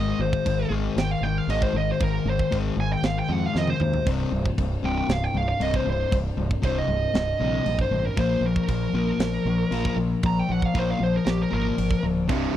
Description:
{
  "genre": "heavy metal",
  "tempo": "117 BPM",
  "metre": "4/4",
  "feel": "straight",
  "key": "unclear",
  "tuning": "A4 = 440 Hz",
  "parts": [
    { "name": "high-gain lead guitar", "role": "melody", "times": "0.0-12.0 s", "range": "G4 to Bb5", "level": "-28 LUFS", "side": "right 2 dB", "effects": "distortion, tape echo" },
    { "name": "sludgy distorted guitar", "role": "riff", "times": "0.0-12.6 s", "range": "C2 to Bb3", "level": "-26 LUFS", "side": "left 4 dB", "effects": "overdrive" },
    { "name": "growling fingered electric bass", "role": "bass", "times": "0.0-12.5 s", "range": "C1 to F2", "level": "-28 LUFS", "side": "right 1 dB", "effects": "overdrive" },
    { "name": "tight metal drum kit", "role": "drums", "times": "0.3-12.4 s", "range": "crash cymbal, kick drum, snare drum, toms", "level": "-29 LUFS", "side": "right 1 dB", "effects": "none" },
    { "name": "fuzz guitar", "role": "riff", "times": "12.3-12.6 s", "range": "C2 to C3", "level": "-31 LUFS", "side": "right 3 dB", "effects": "distortion" },
    { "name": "tight distorted guitar", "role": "riff", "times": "12.3-12.6 s", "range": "C2 to C3", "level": "-28 LUFS", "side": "right 13 dB", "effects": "distortion" }
  ],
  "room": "small room ambience",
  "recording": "dry, close 1970s-style studio recording",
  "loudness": "-22 LUFS",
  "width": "side -12 dB against mid",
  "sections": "0.0-12.6 A section",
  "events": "lead electric guitar solo 0.0-12.6; drum fill 3.5-4.1",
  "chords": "0.0 Ab; 4.1 Cm; 8.2 Bb5"
}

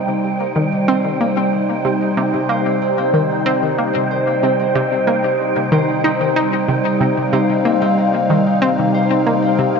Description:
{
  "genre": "ambient",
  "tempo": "93 BPM",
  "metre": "4/4",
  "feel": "straight",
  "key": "C minor",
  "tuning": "A4 = 440 Hz",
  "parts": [
    { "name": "phased analog pad", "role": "sustained chords", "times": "0.0-9.8 s", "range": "G3 to F5", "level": "-18 LUFS", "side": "right 1 dB", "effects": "phaser, chorus, shimmer reverb" },
    { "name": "concert harp", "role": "arpeggios", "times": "0.0-9.8 s", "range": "C3 to C5", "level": "-21 LUFS", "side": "left 2 dB", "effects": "auto-pan, ping-pong delay, shimmer reverb" },
    { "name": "analog pluck", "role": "riff", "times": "0.0-9.7 s", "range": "C3 to Eb4", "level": "-19 LUFS", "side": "equal", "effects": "chorus, ping-pong delay, shimmer reverb" },
    { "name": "wind-like tuned noise texture", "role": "texture", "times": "0.0-9.8 s", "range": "G5", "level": "-26 LUFS", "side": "right 2 dB", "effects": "built-in reverb, analog chorus, shimmer reverb" }
  ],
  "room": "wet plate reverb, RT60 2.6 s",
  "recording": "dreamy mix soaked in reverb, nothing above 7.5 kHz",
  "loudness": "-14 LUFS",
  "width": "side -5 dB against mid",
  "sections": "0.0-9.8 A section",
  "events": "none",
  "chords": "0.0 Cm"
}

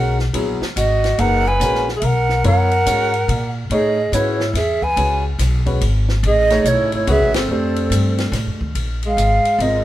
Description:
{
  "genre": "modal jazz",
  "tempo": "142 BPM",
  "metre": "3/4",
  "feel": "swing 64% on 8ths",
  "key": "B mixolydian",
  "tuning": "A4 = 441 Hz",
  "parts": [
    { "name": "breathy hollow jazz flute", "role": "melody", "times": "0.0-9.8 s", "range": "A4 to G#5", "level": "-19 LUFS", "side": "right 2 dB", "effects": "none" },
    { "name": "warm alto saxophone", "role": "second line", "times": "0.0-9.8 s", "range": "Ab3 to B4", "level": "-22 LUFS", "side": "left 1 dB", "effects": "none" },
    { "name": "warm grand piano", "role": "accompaniment", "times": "0.0-9.8 s", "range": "F#3 to Eb5", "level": "-23 LUFS", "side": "left 1 dB", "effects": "none" },
    { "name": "upright bass", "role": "bass", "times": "0.0-9.8 s", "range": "F#1 to A#2", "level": "-19 LUFS", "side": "equal", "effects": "none" },
    { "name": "compact cocktail drum kit", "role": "drums", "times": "0.2-9.7 s", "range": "hi-hat, kick drum, ride cymbal, snare drum", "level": "-27 LUFS", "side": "left 1 dB", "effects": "none" }
  ],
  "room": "light reverb",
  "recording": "band playing live in one room",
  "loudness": "-15 LUFS",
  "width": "side -14 dB against mid",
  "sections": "0.0-8.8 A section; 8.8-9.8 B section",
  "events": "band accent 7.3",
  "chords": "0.0 Bmaj7sus2; 3.7 Amaj9; 7.5 Fadd9; 8.8 Bb9sus4"
}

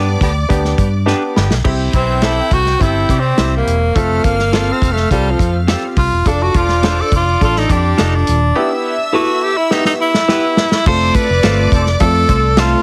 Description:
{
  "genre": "uptempo 1960s-style soul",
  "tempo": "104 BPM",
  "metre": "4/4",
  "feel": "straight",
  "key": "C major",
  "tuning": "A4 = 438 Hz",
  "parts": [
    { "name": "rich studio string section", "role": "second line", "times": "0.0-12.8 s", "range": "D5 to G6", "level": "-27 LUFS", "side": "equal", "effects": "none" },
    { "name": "warm upright piano", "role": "accompaniment", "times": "0.0-12.8 s", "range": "A3 to C5", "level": "-23 LUFS", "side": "equal", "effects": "none" },
    { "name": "clean electric guitar", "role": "stabs", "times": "0.0-12.7 s", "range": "C4 to C5", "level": "-24 LUFS", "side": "equal", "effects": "none" },
    { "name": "vintage muted fingered electric bass", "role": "bass", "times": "0.0-12.7 s", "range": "Eb1 to C3", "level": "-19 LUFS", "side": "equal", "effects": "none" },
    { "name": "bright saxophone section", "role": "second line", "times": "0.2-8.2, 11.7-12.4 s", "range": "D3 to A4", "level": "-27 LUFS", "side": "equal", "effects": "none" },
    { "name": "warm soul drum kit", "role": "drums", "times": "0.2-12.7 s", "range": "crash cymbal, hi-hat, kick drum, snare drum", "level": "-19 LUFS", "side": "equal", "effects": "none" },
    { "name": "breathy tenor saxophone", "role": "melody", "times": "2.0-12.8 s", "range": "F3 to C5", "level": "-19 LUFS", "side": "equal", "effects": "none" }
  ],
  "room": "light reverb",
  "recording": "heavily compressed radio sound",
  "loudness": "-14 LUFS",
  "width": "mono",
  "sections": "0.0-1.7 A section; 1.7-10.9 B section; 10.9-12.8 C section",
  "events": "drum fill 1.1-1.7, 9.7-10.9; tenor saxophone solo 1.7-10.9",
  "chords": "0.0 G; 1.7 C; 4.0 F; 6.3 Dm; 8.6 Em; 10.9 F"
}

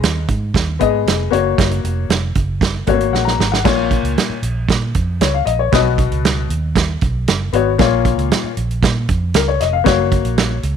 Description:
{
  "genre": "uptempo 1960s-style soul",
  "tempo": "116 BPM",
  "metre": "4/4",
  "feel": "straight",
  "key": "unclear",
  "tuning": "A4 = 440 Hz",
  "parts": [
    { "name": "warm upright piano", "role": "accompaniment", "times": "0.0-10.6 s", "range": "Ab2 to Bb5", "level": "-17 LUFS", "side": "left 13 dB", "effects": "none" },
    { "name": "vintage muted fingered electric bass", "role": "bass", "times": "0.0-10.8 s", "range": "F1 to Bb2", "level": "-20 LUFS", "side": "right 1 dB", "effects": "none" },
    { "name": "natural country drum kit", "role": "drums", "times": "0.0-10.8 s", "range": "crash cymbal, hi-hat, kick drum, snare drum", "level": "-17 LUFS", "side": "right 4 dB", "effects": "none" }
  ],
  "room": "studio ambience",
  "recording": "1960s-style stereo",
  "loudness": "-14 LUFS",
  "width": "side -8 dB against mid",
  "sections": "0.0-3.7 A section; 3.7-10.8 B section",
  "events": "drum fill 3.1-3.7",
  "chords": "0.0 Abm; 1.3 Gb; 3.7 Bbm; 5.7 Cb; 7.8 Bbm; 9.9 Gb"
}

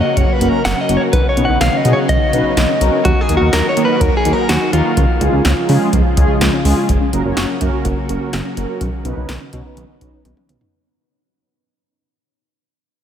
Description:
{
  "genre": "synth-pop",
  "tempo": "125 BPM",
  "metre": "4/4",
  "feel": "straight",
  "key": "F# major",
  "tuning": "A4 = 440 Hz",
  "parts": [
    { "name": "direct-recorded clean electric guitar", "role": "melody", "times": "0.0-6.4 s", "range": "E#4 to F#5", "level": "-18 LUFS", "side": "equal", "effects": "diffuse ambient delay" },
    { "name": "mellow synth brass", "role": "accompaniment", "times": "0.0-10.7 s", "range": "G#3 to C#5", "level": "-20 LUFS", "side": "equal", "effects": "chorus, low-pass filter" },
    { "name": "soft string machine", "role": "sustained chords", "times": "0.0-10.7 s", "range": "C#3 to F#4", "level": "-22 LUFS", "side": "equal", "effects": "ensemble chorus, low-pass filter" },
    { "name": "warbly dusty pluck", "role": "arpeggios", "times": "0.1-10.7 s", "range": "D#3 to F#4", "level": "-25 LUFS", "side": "left 1 dB", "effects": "none" },
    { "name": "chorused synth bass", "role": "bass", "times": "0.2-10.6 s", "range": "F#1 to D#3", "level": "-17 LUFS", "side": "equal", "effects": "none" },
    { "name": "electro analog drum machine", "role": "drums", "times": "0.2-10.7 s", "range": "hi-hat, kick drum, snare drum, toms", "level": "-19 LUFS", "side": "equal", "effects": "none" }
  ],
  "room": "moderate cathedral reverb, RT60 5.7 s",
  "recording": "dreamy mix soaked in reverb",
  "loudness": "-13 LUFS",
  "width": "side -9 dB against mid",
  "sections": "0.0-6.9 A section; 6.9-10.7 B section",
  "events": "fade-out 6.9-10.7; filter sweep 6.9-10.7; drum fill 10.2-10.7",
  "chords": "0.0 F#; 1.1 Badd9; 3.0 D#m; 5.0 C#; 6.9 F#; 8.8 Badd9"
}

